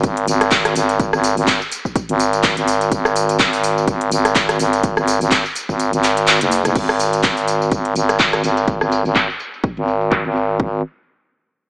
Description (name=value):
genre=bass house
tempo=125 BPM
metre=4/4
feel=swing 57% on 16ths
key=unclear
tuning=A4 = 440 Hz
part: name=growling FM bass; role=bass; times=0.0-10.8 s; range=F#1 to G#1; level=-16 LUFS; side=equal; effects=overdrive, sidechain pumping
part: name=electronic kick drum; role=drums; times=0.0-10.7 s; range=none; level=-19 LUFS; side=equal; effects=none
part: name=house drum kit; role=drums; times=0.0-10.6 s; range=crash cymbal, handclaps, hi-hat, rim click, tambourine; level=-18 LUFS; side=equal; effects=low-pass filter on hats, low-pass filter on perc, low-pass filter on snare, low-pass filter on cymbals
room=moderate lush hall reverb, RT60 1.6 s, digital ambience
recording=dreamy mix soaked in reverb, small speaker sound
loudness=-14 LUFS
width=side -29 dB against mid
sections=0.0-6.8 A section; 6.8-10.6 B section; 10.6-11.7 C section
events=drop 0.0-6.8; kick drops out 5.8-6.8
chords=none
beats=0.04 0.52 | 1.00 1.48 1.96 2.44 | 2.92 3.40 3.88 4.36 | 4.84 5.32 5.80 6.28 | 6.76 7.24 7.72 8.20 | 8.68 9.16 9.64 10.12 | 10.60